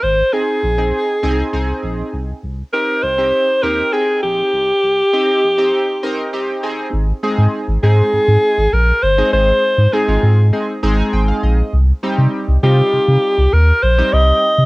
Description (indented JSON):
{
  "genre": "dance-pop",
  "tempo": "100 BPM",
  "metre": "4/4",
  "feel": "straight",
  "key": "Ab major",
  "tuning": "A4 = 444 Hz",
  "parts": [
    { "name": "edgy alto saxophone", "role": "melody", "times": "0.0-14.7 s", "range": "G4 to Eb5", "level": "-14 LUFS", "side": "equal", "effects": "cassette tape" },
    { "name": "warm sub bass", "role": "bass", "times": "0.0-14.7 s", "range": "G1 to C3", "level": "-14 LUFS", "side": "equal", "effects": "none" },
    { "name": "chorused retro synth keys", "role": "accompaniment", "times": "0.3-14.4 s", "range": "G3 to Bb5", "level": "-21 LUFS", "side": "equal", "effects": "cassette tape" }
  ],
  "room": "moderate small room reverb, RT60 0.5 s",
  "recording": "home recording on cassette, high-pass filter",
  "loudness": "-13 LUFS",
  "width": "side -22 dB against mid",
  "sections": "0.0-6.9 A section; 6.9-14.7 B section",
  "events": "build-up 0.0-6.9; filter sweep 0.0-6.9; drop 6.9-14.7; synth keys fill 10.5-11.7",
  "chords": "0.0 Ab; 2.1 Cm; 6.6 Ab; 11.7 Cm",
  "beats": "0.33 0.93 1.53 | 2.13 2.73 3.33 3.93 | 4.53 5.13 5.73 6.33 | 6.93 7.53 8.13 8.73 | 9.33 9.93 10.53 11.13 | 11.73 12.33 12.93 13.53 | 14.13"
}